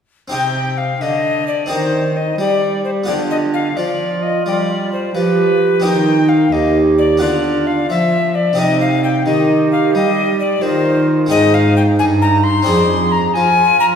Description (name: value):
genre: classical, baroque-style sonata movement with continuo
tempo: 87 BPM (dotted quarters)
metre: 12/8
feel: straight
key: C minor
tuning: A4 = 441 Hz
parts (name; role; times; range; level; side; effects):
- alto recorder; melody; 0.3-13.9 s; B4 to C6; -17 LUFS; left 4 dB; none
- harpsichord; accompaniment; 0.3-14.0 s; Eb2 to B4; -22 LUFS; equal; none
- dark cello; bass; 0.3-14.0 s; Eb2 to G3; -18 LUFS; right 1 dB; none
- mellow hollow baroque flute; second line; 1.7-14.0 s; Eb4 to Ab4; -18 LUFS; right 3 dB; none
room: wet concert hall reverb, RT60 2.0 s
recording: recorded in a church or concert hall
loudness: -13 LUFS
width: side -7 dB against mid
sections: 0.3-14.0 A section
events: none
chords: 0.3 Cm; 1.7 Cm/Eb; 3.1 G7/D; 5.8 Cm/Eb; 7.2 Bdim/D; 8.6 Cm; 11.3 Ab; 12.7 Dm7b5/F